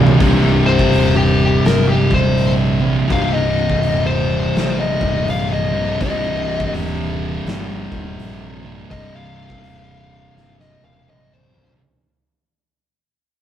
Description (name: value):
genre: stoner and doom metal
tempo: 83 BPM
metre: 4/4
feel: swing 63% on 8ths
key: C minor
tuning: A4 = 440 Hz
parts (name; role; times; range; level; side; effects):
- thick fuzz guitar; riff; 0.0-11.8 s; C2 to C3; -20 LUFS; left 3 dB; distortion
- thick fuzz guitar; riff; 0.0-11.8 s; C2 to C3; -19 LUFS; right 3 dB; distortion
- big rock drum kit; drums; 0.1-11.8 s; hi-hat, kick drum, snare drum, toms; -22 LUFS; equal; none
- growling fingered electric bass; bass; 0.2-11.7 s; C1 to Bb1; -25 LUFS; equal; overdrive
- fuzz lead guitar; melody; 0.7-11.7 s; G4 to F5; -21 LUFS; left 4 dB; distortion
room: moderate stone room reverb, RT60 1.5 s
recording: rough rehearsal-room recording, warm saturation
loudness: -14 LUFS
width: side -10 dB against mid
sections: 0.2-11.8 A section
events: drum fill 0.0, 10.3-11.8; fade-out 0.2-11.8; lead electric guitar solo 0.2-11.8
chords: 0.2 Cm